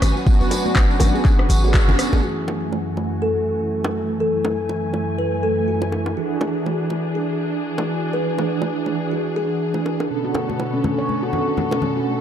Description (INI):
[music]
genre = afro house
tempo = 122 BPM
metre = 4/4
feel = swing 58% on 16ths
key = F# minor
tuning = A4 = 440 Hz
[part]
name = rich studio string section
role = sustained chords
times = 0.0-12.2 s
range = D3 to G#5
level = -28 LUFS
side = left 1 dB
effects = sidechain pumping, low-pass filter
[part]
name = warm 808-style bass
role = bass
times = 0.0-2.2 s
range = F#1 to G#1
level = -19 LUFS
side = equal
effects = sidechain pumping
[part]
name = afro-pop drum kit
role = drums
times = 0.0-2.1 s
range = handclaps, hi-hat, rim click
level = -26 LUFS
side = equal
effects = overdrive
[part]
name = congas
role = percussion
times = 0.0-2.0, 10.3-11.9 s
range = none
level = -27 LUFS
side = left 4 dB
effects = none
[part]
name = tambourine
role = percussion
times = 0.0-2.2 s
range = none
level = -32 LUFS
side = right 3 dB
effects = none
[part]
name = handpan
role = arpeggios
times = 0.2-2.2, 10.2-12.0 s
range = C#4 to C#5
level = -27 LUFS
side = left 1 dB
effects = sidechain pumping, ping-pong delay
[part]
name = mellow synth brass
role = stabs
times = 0.3-12.2 s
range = F#2 to G#5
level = -24 LUFS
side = right 2 dB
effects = chorus, sidechain pumping, ping-pong delay
[part]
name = electronic kick drum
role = drums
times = 0.3-1.9 s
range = none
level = -17 LUFS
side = equal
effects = overdrive
[part]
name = bongos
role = percussion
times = 0.5-11.8 s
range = none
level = -28 LUFS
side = right 2 dB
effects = none
[part]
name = kalimba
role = melody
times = 1.7-9.8 s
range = F#4 to B4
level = -26 LUFS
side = left 1 dB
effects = ping-pong delay
[sound]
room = light reverb, small room ambience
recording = dark, warm production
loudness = -18 LUFS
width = side -9 dB against mid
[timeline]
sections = 0.0-2.2 A section; 2.2-12.2 B section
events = band accent 1.7; filter sweep on analog polysynth 2.2-12.2; filter sweep on string section 2.2-12.2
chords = 0.0 G#m7b5; 2.2 F#m7; 6.2 E7; 10.1 Bm7